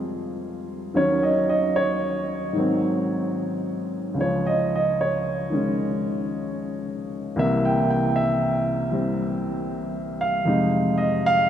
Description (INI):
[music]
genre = solo jazz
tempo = 76 BPM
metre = 4/4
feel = swing 67% on 8ths, rubato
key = unclear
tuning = A4 = 440 Hz
[part]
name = dark baby grand piano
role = solo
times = 0.0-11.5 s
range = C2 to G5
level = -21 LUFS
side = equal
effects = none
[sound]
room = wet cathedral reverb, RT60 5.6 s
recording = in a vast, echoing space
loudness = -21 LUFS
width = side -10 dB against mid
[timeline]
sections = 0.0-11.5 A section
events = grand piano solo 0.0-11.5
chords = 0.0 Fm7; 1.0 Ebm7; 2.6 Ab7; 4.2 Db; 7.4 C7; 10.5 Fm7